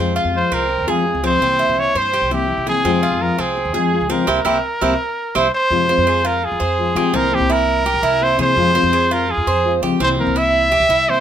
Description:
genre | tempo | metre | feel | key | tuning
latin | 168 BPM | 4/4 | straight | F harmonic minor | A4 = 440 Hz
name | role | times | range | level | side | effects
nylon-string guitar | accompaniment | 0.0-11.2 s | C3 to F4 | -21 LUFS | left 5 dB | none
Cuban tres | arpeggios | 0.0-11.2 s | C4 to C5 | -20 LUFS | right 4 dB | none
upright bass | bass | 0.0-11.2 s | C2 to F3 | -25 LUFS | equal | none
clear trumpet | melody | 0.4-11.2 s | G4 to E5 | -17 LUFS | right 1 dB | plate reverb
room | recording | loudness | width
moderate studio reverb, RT60 0.6 s | none | -14 LUFS | side -9 dB against mid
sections
0.0-5.7 A section; 5.7-11.2 B section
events
band accent 4.3-5.7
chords
0.0 Fm; 1.4 C7; 2.8 Fm; 4.3 C7; 5.7 Fm; 7.1 C7; 8.6 Fm; 10.0 C7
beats
0.33 0.69 1.05 | 1.41 1.77 2.13 2.48 | 2.84 3.20 3.56 3.92 | 4.28 4.63 4.99 5.35 | 5.71 6.07 6.42 6.78 | 7.14 7.50 7.86 8.21 | 8.57 8.93 9.29 9.64 | 10.00 10.36 10.72 11.07

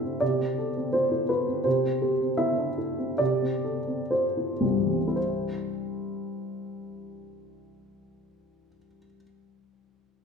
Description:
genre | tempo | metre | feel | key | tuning
classical, romantic character piece for solo piano | 53-85 BPM | 2/4 | rubato | C major | A4 = 440 Hz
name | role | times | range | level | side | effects
warm upright piano | solo | 0.0-10.2 s | C2 to E5 | -25 LUFS | equal | none
room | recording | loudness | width
wet large studio reverb, RT60 1.3 s | heard from further back in the room | -24 LUFS | side -5 dB against mid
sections
0.0-5.2 A section; 5.2-9.0 B section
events
slowing down 0.9-5.2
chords
0.2 F/C; 1.7 C; 3.2 F/C; 5.2 C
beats
| 0.21 0.94 | 1.66 2.39 | 3.19 4.11 | 5.16 6.14 | 7.10 8.08

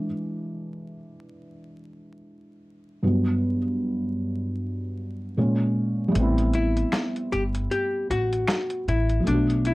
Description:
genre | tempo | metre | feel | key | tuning
lo-fi hip hop | 77 BPM | 4/4 | swing 57% on 16ths | A dorian | A4 = 441 Hz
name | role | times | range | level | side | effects
felt-muted upright piano | accompaniment | 0.0-9.7 s | G2 to F#4 | -26 LUFS | equal | cassette tape
upright bass | bass | 6.2-9.7 s | G1 to B1 | -25 LUFS | equal | none
dusty soul sampler-style drum kit | drums | 6.2-9.7 s | finger snaps, hi-hat, snare drum | -28 LUFS | equal | none
archtop guitar, miked and amplified | melody | 6.5-9.7 s | D4 to G4 | -26 LUFS | left 2 dB | none
room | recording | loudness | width
moderate small room reverb, RT60 0.5 s | dark, warm production, vinyl crackle | -22 LUFS | side -20 dB against mid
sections
0.0-6.1 A section; 6.1-9.7 B section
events
felt piano solo 0.0-6.1; kick muted 6.1-9.7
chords
0.0 E7; 3.0 Gmaj7; 5.4 Bbm7; 6.1 Am7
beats
0.69 1.47 2.25 | 3.02 3.80 4.58 5.36 | 6.14 6.92 7.70 8.48 | 9.26

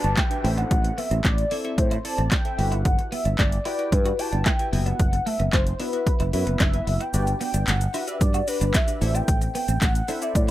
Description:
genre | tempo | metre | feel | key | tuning
dance-pop | 112 BPM | 4/4 | straight | unclear | A4 = 439 Hz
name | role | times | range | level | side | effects
warm velvety synth lead | melody | 0.0-10.5 s | B4 to A5 | -28 LUFS | left 1 dB | chorus, dub echo
glassy wavetable pluck | accompaniment | 0.0-10.5 s | B3 to G5 | -32 LUFS | left 2 dB | chorus, sidechain pumping
twelve-string electric guitar | riff | 0.0-10.5 s | A3 to F#4 | -34 LUFS | right 4 dB | analog chorus
sustaining fretless electric bass | bass | 0.0-10.5 s | F#1 to A2 | -24 LUFS | equal | wide subtle chorus, sidechain pumping
punchy analog drum machine | drums | 0.0-10.5 s | handclaps, hi-hat, kick drum, shaker, snare drum | -23 LUFS | equal | overdrive
downlifter | sound effects | 0.0-2.9 s | none | -42 LUFS | right 1 dB | none
room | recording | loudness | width
little or no reverb | none | -20 LUFS | side -14 dB against mid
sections
0.0-10.5 A section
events
kick muted 7.1-8.2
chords
0.4 Am; 2.6 Emadd9/G; 4.7 Bsus4/F#; 7.1 Gmaj7; 9.0 Am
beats
0.17 | 0.71 1.25 1.78 2.32 | 2.85 3.39 3.92 4.46 | 5.00 5.53 6.07 6.60 | 7.14 7.67 8.21 8.74 | 9.28 9.82 10.35

